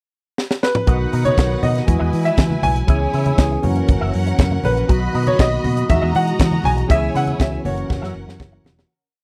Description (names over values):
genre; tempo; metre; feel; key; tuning
disco; 120 BPM; 4/4; straight; unclear; A4 = 439 Hz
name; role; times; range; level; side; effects
tight funk drum kit; drums; 0.4-8.9 s; hi-hat, kick drum, snare drum, toms; -18 LUFS; equal; none
clear grand piano; melody; 0.6-8.6 s; B4 to G#5; -24 LUFS; equal; none
rich studio string section; second line; 0.9-8.9 s; C#4 to B5; -29 LUFS; equal; none
electric guitar with an envelope filter; accompaniment; 0.9-8.8 s; F#4 to E5; -32 LUFS; equal; ensemble chorus
tine electric piano; accompaniment; 0.9-8.9 s; D#3 to A#4; -28 LUFS; equal; overdrive
fingered electric bass; bass; 0.9-8.8 s; E1 to E3; -23 LUFS; equal; none
congas; percussion; 1.3-8.8 s; none; -29 LUFS; equal; none
mellow tonewheel organ; sustained chords; 4.9-8.9 s; B2 to F#4; -32 LUFS; equal; none
room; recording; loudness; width
little or no reverb; dry, close 1970s-style studio recording; -18 LUFS; mono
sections
0.0-0.9 pickup bar; 0.9-8.9 pre-chorus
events
drum fill 0.4-0.9, 7.9-8.9; fade-out 6.9-8.9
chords
0.0 N.C.; 0.9 Bmaj7; 1.9 Emaj9; 2.9 C#m7; 3.6 F#7; 4.9 Bmaj7; 5.9 Emaj9; 6.9 C#m7; 7.7 F#7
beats
0.37 | 0.88 1.38 1.88 2.38 | 2.89 3.39 3.89 4.39 | 4.89 5.39 5.90 6.40 | 6.90 7.40 7.90 8.40